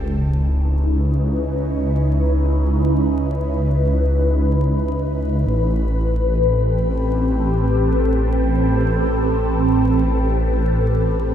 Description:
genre	drum and bass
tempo	free time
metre	none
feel	none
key	C# minor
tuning	A4 = 442 Hz
part	ethereal airy pad	sustained chords	0.0-11.3 s	C4 to B4	-21 LUFS	equal	ensemble chorus, built-in reverb, phaser
part	detuned saw bass	bass	0.0-11.3 s	A1 to C#2	-18 LUFS	equal	none
part	sub drop	sound effects	0.0-0.9 s	none	-31 LUFS	equal	none
room	light reverb, digital ambience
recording	vinyl crackle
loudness	-16 LUFS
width	side -9 dB against mid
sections	0.0-11.3 A section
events	impact 0.0-0.9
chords	0.0 C#m9; 5.5 Am9

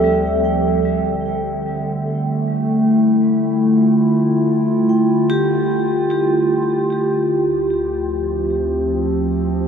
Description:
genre	ambient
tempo	free time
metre	none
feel	none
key	unclear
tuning	A4 = 440 Hz
part	warbly tape-like pad	sustained chords	0.0-9.7 s	D2 to A4	-16 LUFS	equal	chorus, built-in reverb
part	vibraphone with hard mallets	arpeggios	0.0-9.7 s	G3 to G5	-23 LUFS	right 1 dB	tape echo
room	wet huge ambient reverb, RT60 9.0 s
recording	dreamy mix soaked in reverb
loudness	-15 LUFS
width	side -7 dB against mid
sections	0.0-9.7 A section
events	none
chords	0.0 F6/D

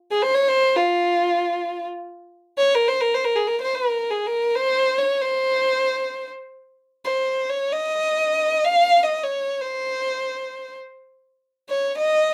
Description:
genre	Turkish makam ensemble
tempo	free time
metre	none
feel	none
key	unclear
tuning	A4 = 440 Hz
part	dark violin	solo	0.1-12.3 s	F4 to F5	-22 LUFS	equal	none
room	wet studio ambience, RT60 0.5 s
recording	none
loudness	-22 LUFS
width	mono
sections	0.0-2.1 A section; 2.1-12.3 A section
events	none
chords	none

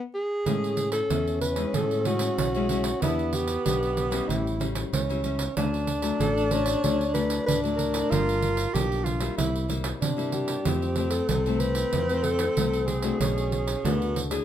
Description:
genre	samba and choro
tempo	94 BPM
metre	4/4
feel	straight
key	unclear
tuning	A4 = 435 Hz
part	breathy alto saxophone	melody	0.0-14.2 s	E4 to C#5	-29 LUFS	left 1 dB	none
part	breathy tenor saxophone	second line	0.5-14.2 s	B3 to G4	-30 LUFS	right 2 dB	none
part	nylon-string guitar	accompaniment	0.5-14.4 s	F2 to G#4	-32 LUFS	left 6 dB	none
part	fingered electric bass	bass	0.5-14.4 s	G1 to C3	-30 LUFS	equal	none
part	pandeiro	percussion	0.5-14.4 s	none	-31 LUFS	right 5 dB	none
room	moderate studio reverb, RT60 0.5 s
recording	minimal, uncompressed stereo recording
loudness	-23 LUFS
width	side -10 dB against mid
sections	0.5-14.4 A section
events	band accent 0.0-0.5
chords	0.5 Amaj7; 3.0 Em7; 4.3 A7; 5.6 Dmaj7; 8.1 Gm7; 9.4 C7; 10.7 Fmaj7; 13.2 Bm7

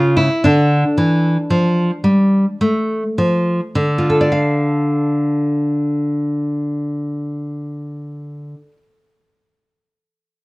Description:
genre	classical, baroque-style dance for nylon-string guitar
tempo	54 BPM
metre	3/4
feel	rubato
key	D minor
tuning	A4 = 439 Hz
part	nylon-string guitar	solo	0.0-8.8 s	C#3 to F5	-15 LUFS	equal	none
room	wet studio reverb, RT60 0.6 s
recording	cassette tape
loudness	-14 LUFS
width	side -23 dB against mid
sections	0.0-3.8 A section; 3.8-7.1 B section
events	slowing down 0.0-3.8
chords	0.4 Dm

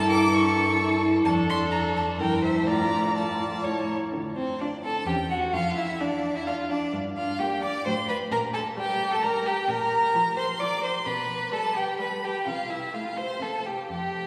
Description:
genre	quick classical-period movement for string quartet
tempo	129 BPM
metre	3/4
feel	rubato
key	D minor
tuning	A4 = 437 Hz
part	rich violin	melody	0.0-14.3 s	C5 to D6	-31 LUFS	equal	none
part	rich violin	second line	0.0-14.3 s	C4 to D5	-31 LUFS	equal	none
part	rich viola	accompaniment	0.0-13.8 s	F3 to F4	-32 LUFS	equal	none
part	rich cello	bass	0.0-14.3 s	E2 to D3	-35 LUFS	equal	none
room	wet cathedral reverb, RT60 4.9 s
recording	recorded in a church or concert hall, studio reverb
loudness	-26 LUFS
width	mono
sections	0.0-4.1 A section; 4.1-14.3 B section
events	none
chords	0.0 A7/G; 1.3 Dm/F; 2.2 Edim/G; 2.7 Dm/A; 3.6 A; 4.1 Dm; 5.1 C#dim/E; 5.5 Dm/F; 6.9 Gm; 7.8 F#dim/A; 8.3 Gm/Bb; 9.7 Bb5; 11.1 G/B; 12.5 Cadd11; 13.4 C5

